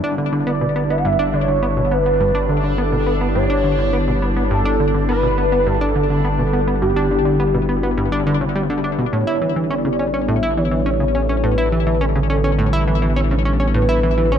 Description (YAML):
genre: ambient, sequencer-driven space music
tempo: 104 BPM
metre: 4/4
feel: straight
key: G lydian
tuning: A4 = 440 Hz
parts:
  - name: phased analog pad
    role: sustained chords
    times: 0.0-14.4 s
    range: D3 to A4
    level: -22 LUFS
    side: equal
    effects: phaser, chorus
  - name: plucky analog bass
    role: riff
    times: 0.0-14.4 s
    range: G2 to E4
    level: -21 LUFS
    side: left 1 dB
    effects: ping-pong delay
  - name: warm sub bass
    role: bass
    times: 0.0-14.4 s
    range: G1 to A1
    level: -22 LUFS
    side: equal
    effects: none
  - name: bubbling stepped-filter texture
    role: texture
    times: 0.0-9.2 s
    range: D4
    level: -30 LUFS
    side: right 1 dB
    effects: chorus, built-in reverb
  - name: expressive synth lead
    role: melody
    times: 0.5-14.4 s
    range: G4 to F#5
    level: -21 LUFS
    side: equal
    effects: analog chorus, ping-pong delay
room: moderate plate reverb, RT60 2.7 s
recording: none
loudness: -16 LUFS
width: side -8 dB against mid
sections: 0.0-9.1 A section; 9.1-14.4 A section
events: none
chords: 0.0 G; 9.1 A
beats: 0.47 1.05 1.63 | 2.20 2.78 3.36 3.93 | 4.51 5.09 5.67 6.24 | 6.82 7.39 7.97 8.55 | 9.13 9.70 10.28 10.86 | 11.43 12.01 12.59 13.16 | 13.74 14.32